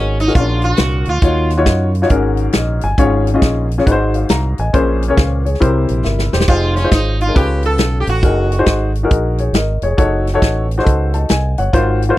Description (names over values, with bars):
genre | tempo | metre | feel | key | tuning
uptempo gospel | 137 BPM | 4/4 | swing 65% on 8ths | unclear | A4 = 440 Hz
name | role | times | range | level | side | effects
sitar | melody | 0.0-1.5, 6.5-8.9 s | Db4 to A4 | -21 LUFS | right 2 dB | none
dark baby grand piano | accompaniment | 0.0-12.2 s | Ab2 to Bb5 | -17 LUFS | left 2 dB | none
fingered electric bass with an envelope filter | bass | 0.0-12.1 s | E1 to Gb2 | -17 LUFS | right 1 dB | none
natural country drum kit | drums | 0.2-12.1 s | hi-hat, kick drum, snare drum, splash cymbal | -15 LUFS | equal | none
room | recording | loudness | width
little or no reverb | dry, close 1970s-style studio recording | -12 LUFS | side -16 dB against mid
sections
0.0-12.2 A section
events
grand piano fill 2.3-3.0; drum fill 6.0-6.5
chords
0.3 Bb7b13; 1.2 Ebm9; 2.1 Ab9sus4; 3.0 Db/Ab; 3.9 Ab7; 4.7 Bbm9; 5.6 C7; 6.5 Fm7; 7.4 Dbaug7; 8.2 Gb69; 10.0 Gbm6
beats
0.35 0.79 | 1.23 1.67 2.10 2.54 | 2.98 3.42 3.85 4.29 | 4.73 5.17 5.61 6.04 | 6.48 6.92 7.36 7.79 | 8.23 8.67 9.10 9.54 | 9.98 10.42 10.85 11.29 | 11.73 12.17